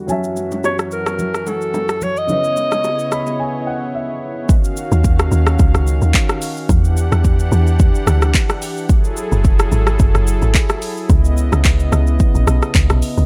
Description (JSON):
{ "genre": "amapiano", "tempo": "109 BPM", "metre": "4/4", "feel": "swing 55% on 16ths", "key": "Eb phrygian", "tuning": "A4 = 440 Hz", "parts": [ { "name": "dark grand piano", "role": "accompaniment", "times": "0.0-4.5 s", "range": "Db3 to Cb6", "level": "-27 LUFS", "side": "equal", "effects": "low-pass filter" }, { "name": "warm analog pad", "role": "sustained chords", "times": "0.0-13.3 s", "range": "Gb2 to F#5", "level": "-26 LUFS", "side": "equal", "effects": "chorus, sidechain pumping, low-pass filter" }, { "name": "deep house drum kit", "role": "drums", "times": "0.1-13.3 s", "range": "handclaps, hi-hat, kick drum, rim click, shaker", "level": "-18 LUFS", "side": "equal", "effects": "none" }, { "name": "congas and bongos", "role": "percussion", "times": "0.1-3.4 s", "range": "none", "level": "-29 LUFS", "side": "equal", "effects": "none" }, { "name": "breathy alto saxophone", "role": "melody", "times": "0.7-3.8 s", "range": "A4 to Eb5", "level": "-22 LUFS", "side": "equal", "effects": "low-pass filter, tape echo" }, { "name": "deep log drum bass", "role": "bass", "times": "4.9-13.3 s", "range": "Gb1 to E2", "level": "-16 LUFS", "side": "equal", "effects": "none" } ], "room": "little or no reverb", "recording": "none", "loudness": "-16 LUFS", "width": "mono", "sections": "0.0-4.5 A section; 4.5-13.3 B section", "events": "filter sweep 0.0-4.5; grand piano fill 2.8-4.5; break 3.4-4.5; drop 4.5-13.3", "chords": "0.1 Gbm9; 2.3 Dbm9; 4.5 Ebm9; 6.7 Em9; 8.9 Gbm9; 11.1 Dbm9" }